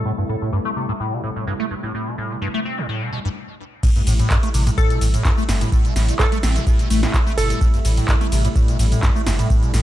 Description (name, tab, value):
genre	acid house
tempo	127 BPM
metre	4/4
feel	swing 53% on 16ths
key	unclear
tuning	A4 = 440 Hz
part	glassy wavetable pluck	melody	0.0-0.2, 4.8-7.7 s	A4	-29 LUFS	right 1 dB	chorus, vintage 12-bit sampler grit, dub echo
part	warm analog pad	sustained chords	0.0-9.8 s	C3 to E4	-29 LUFS	right 1 dB	chorus, tremolo, sidechain pumping
part	liquid acid bass	riff	0.0-9.8 s	G2 to C4	-23 LUFS	equal	phaser, analog chorus, sidechain pumping, tape echo
part	electro analog drum machine	drums	3.8-9.8 s	crash cymbal, handclaps, hi-hat, ride cymbal, shaker, snare drum	-26 LUFS	equal	low-pass filter on snare, small room reverb, low-pass filter on hats, low-pass filter on perc, low-pass filter on cymbals
part	electronic kick drum	drums	3.8-9.6 s	none	-18 LUFS	equal	small room reverb
part	saturated sub bass	bass	4.1-9.8 s	G1 to A1	-19 LUFS	equal	sidechain pumping
room	little or no reverb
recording	dark, warm production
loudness	-17 LUFS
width	side -13 dB against mid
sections	0.0-3.8 A section; 3.8-9.8 B section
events	filter sweep on acid bass 0.0-3.8; stop 3.4-3.8; drop 3.8-9.8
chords	0.0 Am7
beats	| 0.05 0.53 1.00 1.47 | 1.94 2.42 2.89 3.36 | 3.83 4.30 4.78 5.25 | 5.72 6.20 6.67 7.14 | 7.61 8.08 8.56 9.03 | 9.50